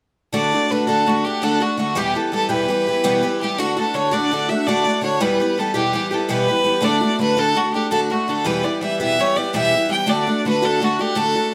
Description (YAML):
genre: celtic folk, Celtic slip jig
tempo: 111 BPM (dotted quarters)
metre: 9/8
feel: straight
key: D major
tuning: A4 = 440 Hz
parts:
  - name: clear fiddle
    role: melody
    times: 0.3-11.5 s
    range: F#4 to G5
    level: -22 LUFS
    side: equal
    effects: none
  - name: picked twelve-string acoustic guitar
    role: accompaniment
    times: 0.3-11.5 s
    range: E2 to G4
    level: -22 LUFS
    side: equal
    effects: none
room: moderate studio reverb, RT60 0.6 s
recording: none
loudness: -19 LUFS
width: mono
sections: 0.3-11.5 A section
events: none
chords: 0.3 D; 2.0 Em; 3.6 D; 5.2 Em; 6.8 D; 8.5 Em; 10.1 D